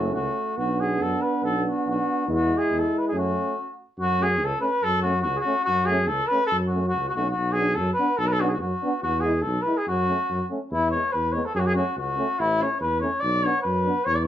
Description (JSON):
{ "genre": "balkan folk, Balkan brass band", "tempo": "143 BPM", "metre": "2/4", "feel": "swing 55% on 16ths", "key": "F# minor", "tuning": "A4 = 435 Hz", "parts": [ { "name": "mellow cornet", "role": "melody", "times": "0.0-14.3 s", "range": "E4 to D5", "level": "-24 LUFS", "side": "left 1 dB", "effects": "none" }, { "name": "mellow French horn", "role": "accompaniment", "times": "0.0-13.9 s", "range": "B3 to E4", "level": "-30 LUFS", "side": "left 1 dB", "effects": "none" }, { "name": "warm euphonium", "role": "accompaniment", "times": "0.0-14.0 s", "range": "G#3 to B3", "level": "-31 LUFS", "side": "right 5 dB", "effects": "none" }, { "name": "mellow tuba", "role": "bass", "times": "0.0-14.3 s", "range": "F#1 to F#2", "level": "-27 LUFS", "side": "equal", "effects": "none" } ], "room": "wet studio reverb, RT60 0.5 s", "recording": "band playing live in one room", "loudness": "-22 LUFS", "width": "side -11 dB against mid", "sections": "0.0-4.0 A section; 4.0-10.7 A section; 10.7-14.3 B section", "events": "stop 3.6-4.0", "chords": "0.0 F#m; 0.6 Bm; 2.3 E; 3.1 F#m; 7.4 Bm; 9.0 E; 9.9 F#m; 10.7 E; 11.6 F#m; 12.4 A; 13.2 Bm", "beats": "0.17 | 0.59 1.01 | 1.44 1.86 | 2.29 2.71 | 3.14 3.56 | 3.99 4.41 | 4.83 5.26 | 5.68 6.10 | 6.52 6.94 | 7.36 7.78 | 8.20 8.62 | 9.04 9.46 | 9.88 10.30 | 10.72 11.13 | 11.55 11.97 | 12.39 12.81 | 13.22 13.64 | 14.06" }